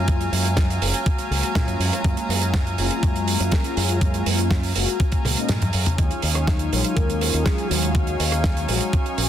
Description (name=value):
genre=nu-disco, nu disco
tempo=122 BPM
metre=4/4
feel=straight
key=unclear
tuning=A4 = 436 Hz
part: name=mellow synth brass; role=accompaniment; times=0.0-9.3 s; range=Gb3 to F5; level=-28 LUFS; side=left 1 dB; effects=chorus, phaser, analog delay
part: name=warm studio string section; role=sustained chords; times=0.0-9.3 s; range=Gb3 to Bb5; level=-28 LUFS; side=equal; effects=sidechain pumping
part: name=fingered electric bass with an envelope filter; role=bass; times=0.0-9.3 s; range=Gb1 to Bb2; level=-24 LUFS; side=equal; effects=none
part: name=damped 70s drum kit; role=drums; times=0.1-9.3 s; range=hi-hat, rim click, snare drum, toms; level=-25 LUFS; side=right 3 dB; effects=none
part: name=electronic kick drum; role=drums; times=0.1-9.0 s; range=none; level=-21 LUFS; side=equal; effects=none
part: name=soft octave-layered synth lead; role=melody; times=6.5-8.7 s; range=Eb4 to Bb4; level=-29 LUFS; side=left 3 dB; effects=chorus, tape echo
room=light reverb, studio reverb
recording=dense, heavily limited modern master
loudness=-19 LUFS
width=side -10 dB against mid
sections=0.0-9.3 A section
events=filter sweep on analog polysynth 0.0-9.3; drum fill 5.2-6.0; kick drops out 5.5-6.0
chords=0.0 Gbmaj9; 6.0 Ebm11